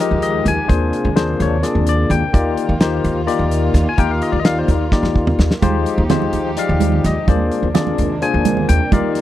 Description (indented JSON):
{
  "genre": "electric jazz fusion",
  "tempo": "255 BPM (eighths)",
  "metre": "7/8",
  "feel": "straight",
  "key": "unclear",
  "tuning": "A4 = 444 Hz",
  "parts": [
    { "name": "barky tine electric piano", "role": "accompaniment", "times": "0.0-9.2 s", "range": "Ab3 to Ab5", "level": "-19 LUFS", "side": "left 6 dB", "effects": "medium stereo tremolo" },
    { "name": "dark chamber string section", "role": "sustained chords", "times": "0.0-9.2 s", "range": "C3 to G4", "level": "-24 LUFS", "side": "right 4 dB", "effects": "none" },
    { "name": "upright bass", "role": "bass", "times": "0.1-9.1 s", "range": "Eb2", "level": "-18 LUFS", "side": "equal", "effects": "none" },
    { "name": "damped 70s drum kit", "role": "drums", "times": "0.2-9.2 s", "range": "hi-hat, kick drum, snare drum, toms", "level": "-18 LUFS", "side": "equal", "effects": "none" },
    { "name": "congas", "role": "percussion", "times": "5.6-9.0 s", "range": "none", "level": "-20 LUFS", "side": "right 10 dB", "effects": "none" }
  ],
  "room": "little or no reverb",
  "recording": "dry, close 1970s-style studio recording",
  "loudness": "-14 LUFS",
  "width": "side -13 dB against mid",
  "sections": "0.0-9.2 A section",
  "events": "drum fill 4.9-5.6",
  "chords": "0.0 Fm9/Eb; 0.7 Bb9/Eb; 2.3 Cm11/Eb; 5.6 Fm9/Eb; 7.3 Bb9/Eb"
}